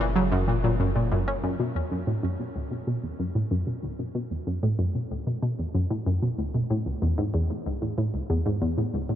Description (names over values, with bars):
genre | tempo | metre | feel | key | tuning
ambient, sequencer-driven space music | 94 BPM | 4/4 | straight | B dorian | A4 = 442 Hz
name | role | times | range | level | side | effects
analog pluck | riff | 0.0-9.2 s | C#2 to C#4 | -25 LUFS | equal | chorus, ping-pong delay
warm sub bass | bass | 0.0-1.6 s | F#1 | -29 LUFS | equal | none
room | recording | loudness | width
moderate huge ambient reverb, RT60 7.1 s | none | -25 LUFS | side -11 dB against mid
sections
0.0-1.6 A section; 1.6-9.2 B section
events
filter sweep on synth arpeggio sound 1.6-9.2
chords
0.0 F#; 1.6 Bm7; 6.7 A